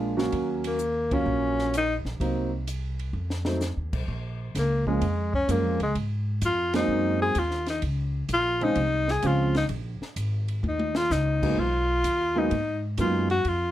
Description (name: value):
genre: jazz, small-group swing and bop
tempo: 128 BPM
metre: 4/4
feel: swing 68% on 8ths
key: unclear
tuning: A4 = 441 Hz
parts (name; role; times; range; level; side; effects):
- warm grand piano; accompaniment; 0.0-13.3 s; F3 to Gb4; -28 LUFS; right 2 dB; none
- upright bass; bass; 0.0-13.7 s; Ab1 to Ab2; -28 LUFS; equal; none
- compact cocktail drum kit; drums; 0.2-13.6 s; crash cymbal, hi-hat, kick drum, ride cymbal, snare drum, toms; -35 LUFS; equal; none
- breathy tenor saxophone; melody; 0.7-13.7 s; Ab3 to Ab4; -25 LUFS; left 1 dB; none
room: light reverb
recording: dark, warm production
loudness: -24 LUFS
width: side -13 dB against mid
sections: 0.0-4.1 A section; 4.1-13.7 B section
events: band accent 1.0, 6.7; drum fill 3.1-3.6, 10.6-11.1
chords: 0.3 Ebm7; 2.2 Cm7b5; 3.1 F7b9; 4.1 Bbm7; 6.0 Ab7; 7.8 Dbmaj9; 9.7 Absus2; 10.6 Eb5; 11.6 Abm9